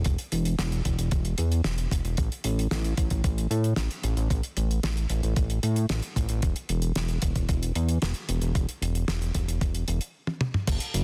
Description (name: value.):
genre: synthwave.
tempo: 113 BPM.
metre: 4/4.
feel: straight.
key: unclear.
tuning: A4 = 442 Hz.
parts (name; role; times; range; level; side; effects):
fat analog bass; bass; 0.0-11.0 s; E1 to A2; -28 LUFS; equal; tube saturation.
damped 70s drum kit; drums; 0.0-11.0 s; crash cymbal, hi-hat, snare drum, toms; -35 LUFS; equal; studio reverb.
electronic kick drum; drums; 0.1-10.8 s; none; -29 LUFS; equal; studio reverb.
room: little or no reverb.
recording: dense, heavily limited modern master.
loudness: -27 LUFS.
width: mono.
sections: 0.0-10.7 A section.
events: drum fill 10.3-10.7.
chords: none.